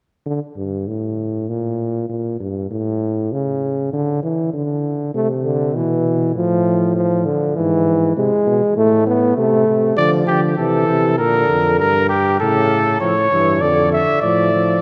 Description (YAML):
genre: classical, imitative canzona for brass ensemble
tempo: 99 BPM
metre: 4/4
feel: straight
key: D minor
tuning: A4 = 438 Hz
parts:
  - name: warm bass trombone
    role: bass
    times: 0.3-14.8 s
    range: F2 to E3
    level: -23 LUFS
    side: equal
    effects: none
  - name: mellow trombone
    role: accompaniment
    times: 5.1-14.8 s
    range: C#3 to B3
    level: -19 LUFS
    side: equal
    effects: none
  - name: mellow trumpet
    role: second line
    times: 10.0-14.8 s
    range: G4 to E5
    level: -18 LUFS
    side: equal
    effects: none
room: wet cathedral reverb, RT60 3.9 s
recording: none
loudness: -17 LUFS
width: mono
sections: 0.3-14.8 A section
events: none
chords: 0.3 N.C.; 1.5 Gm/Bb; 2.7 A; 3.9 Dsus2; 5.1 Am/C (rootless); 6.4 Dm/A; 7.6 E/G#; 8.8 Am; 10.0 Dm; 11.2 Gm; 12.4 A; 13.6 Dm/F